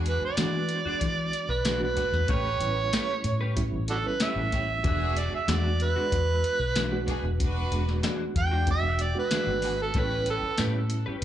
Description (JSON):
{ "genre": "straight-eighth soul blues", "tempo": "94 BPM", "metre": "4/4", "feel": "straight", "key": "E mixolydian", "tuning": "A4 = 440 Hz", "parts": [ { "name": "reed electric piano", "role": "accompaniment", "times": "0.0-11.2 s", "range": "G3 to F#4", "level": "-35 LUFS", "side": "right 5 dB", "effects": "fast tremolo, slapback echo" }, { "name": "clear studio string section", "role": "sustained chords", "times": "0.0-10.6 s", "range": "C#4 to C#5", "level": "-38 LUFS", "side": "left 1 dB", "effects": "none" }, { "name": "vintage muted fingered electric bass", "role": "bass", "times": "0.0-11.2 s", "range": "E1 to E3", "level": "-29 LUFS", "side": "left 1 dB", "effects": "none" }, { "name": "overdriven harmonica", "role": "second line", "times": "0.1-10.6 s", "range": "D4 to G5", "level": "-29 LUFS", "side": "right 3 dB", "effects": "tape echo" }, { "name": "soft vintage rhythm box", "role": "drums", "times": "0.1-11.2 s", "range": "hi-hat, kick drum, snare drum", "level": "-30 LUFS", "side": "left 1 dB", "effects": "none" }, { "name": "clean electric guitar", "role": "stabs", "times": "0.4-11.2 s", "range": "E3 to B4", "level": "-34 LUFS", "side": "left 6 dB", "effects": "ensemble chorus" } ], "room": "light reverb", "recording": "live gig heard through the venue's PA, club reverb, nothing above 11.0 kHz", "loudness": "-24 LUFS", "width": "side -11 dB against mid", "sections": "0.0-11.2 A section", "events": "harmonica solo 0.0-11.2", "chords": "0.0 E9; 2.3 A9; 4.8 E9; 9.9 A9" }